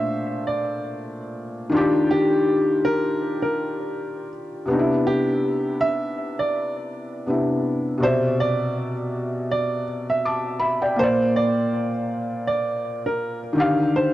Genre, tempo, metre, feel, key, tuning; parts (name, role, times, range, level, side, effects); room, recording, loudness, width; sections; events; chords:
hip hop; 81 BPM; 4/4; swing 58% on 16ths; C major; A4 = 440 Hz
warm upright piano; melody; 0.0-14.1 s; G4 to E5; -25 LUFS; right 1 dB; low-pass filter, analog delay
felt-muted upright piano; accompaniment; 0.0-14.1 s; Bb2 to D6; -22 LUFS; left 1 dB; low-pass filter
light reverb, small room ambience; -20 LUFS; side -14 dB against mid
0.0-8.0 A section; 8.0-14.1 B section
0.0 Bbmaj9; 1.7 Ebmaj9; 4.7 Cmaj9; 11.0 Bbadd9; 13.6 Ebmaj9